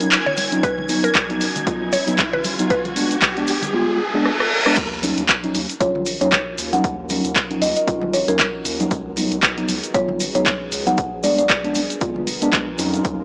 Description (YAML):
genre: deep house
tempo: 116 BPM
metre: 4/4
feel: swing 57% on 16ths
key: Eb minor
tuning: A4 = 440 Hz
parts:
  - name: mallet-like synth pluck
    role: melody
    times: 0.0-2.9 s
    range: Bb4 to Db5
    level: -23 LUFS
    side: equal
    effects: chorus, tape echo
  - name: deep dark ambient pad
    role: sustained chords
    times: 0.0-13.2 s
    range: Cb4 to Cb5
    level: -32 LUFS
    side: equal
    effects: chorus, built-in reverb, vintage 12-bit sampler grit, sidechain pumping
  - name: mellow tine electric piano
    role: stabs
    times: 0.0-13.2 s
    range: Gb3 to F4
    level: -22 LUFS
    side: equal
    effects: medium stereo tremolo, sidechain pumping, analog delay
  - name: punchy analog drum machine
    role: drums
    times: 0.0-13.2 s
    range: crash cymbal, handclaps, hi-hat, rim click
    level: -20 LUFS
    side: equal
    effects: none
  - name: egg shaker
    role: percussion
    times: 0.0-13.2 s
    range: none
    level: -33 LUFS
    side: equal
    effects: none
  - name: riser and reverse cymbal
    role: sound effects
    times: 0.4-4.8 s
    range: none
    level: -24 LUFS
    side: equal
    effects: none
  - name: analog string pad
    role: texture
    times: 0.0-3.7 s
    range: Ab6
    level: -28 LUFS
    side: equal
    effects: ensemble chorus, sidechain pumping
  - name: congas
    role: percussion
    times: 0.3-13.0 s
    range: none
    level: -33 LUFS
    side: equal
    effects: sidechain pumping on perc
  - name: electronic kick drum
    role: drums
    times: 0.6-13.2 s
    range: none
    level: -26 LUFS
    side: equal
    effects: none
  - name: round analog bass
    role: bass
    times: 4.8-13.2 s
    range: F1 to F2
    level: -34 LUFS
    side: equal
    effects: sidechain pumping
  - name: folk marimba with medium mallets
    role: melody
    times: 5.8-11.5 s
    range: Bb4 to Gb5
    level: -22 LUFS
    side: equal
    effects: tape echo
room: light reverb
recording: dry, gritty hardware recording, small speaker sound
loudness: -17 LUFS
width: side -37 dB against mid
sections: 0.0-4.8 A section; 4.8-13.2 B section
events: build-up 0.0-4.8; riser 0.4-4.8; reverse cymbal 3.7-4.8; drum fill 4.3-4.8; drop 4.8-13.2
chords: 0.0 Ebm7; 0.6 Db9sus4; 2.7 Bb7b9; 4.8 Ebm7; 8.9 Db9sus4; 11.0 Bb7b9